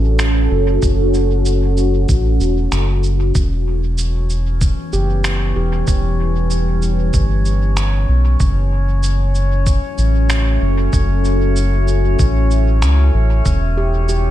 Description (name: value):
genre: ambient dub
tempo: 95 BPM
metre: 4/4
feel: straight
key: E dorian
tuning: A4 = 440 Hz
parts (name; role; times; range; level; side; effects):
- deep dark ambient pad; sustained chords; 0.0-14.3 s; C#4 to E5; -22 LUFS; left 1 dB; chorus, built-in reverb
- round analog bass; bass; 0.0-14.3 s; E1 to C#2; -15 LUFS; equal; none
- electronic finger snaps and cabasa; drums; 0.2-14.2 s; none; -26 LUFS; right 1 dB; dub echo
- electronic kick drum; drums; 0.8-13.6 s; none; -17 LUFS; equal; none
- drifting glass-harmonics texture; texture; 3.8-14.3 s; C#4 to C#5; -27 LUFS; equal; chorus, built-in reverb
- handpan; arpeggios; 4.9-7.0, 13.8-14.3 s; G4; -28 LUFS; right 2 dB; tape echo
room: digital ambience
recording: none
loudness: -14 LUFS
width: side -13 dB against mid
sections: 0.0-14.3 A section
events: none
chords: 0.0 Em; 8.4 F#m7; 13.5 Em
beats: 0.19 | 0.82 1.46 2.09 2.72 | 3.35 3.98 4.61 5.24 | 5.88 6.51 7.14 7.77 | 8.40 9.03 9.66 10.30 | 10.93 11.56 12.19 12.82 | 13.46 14.09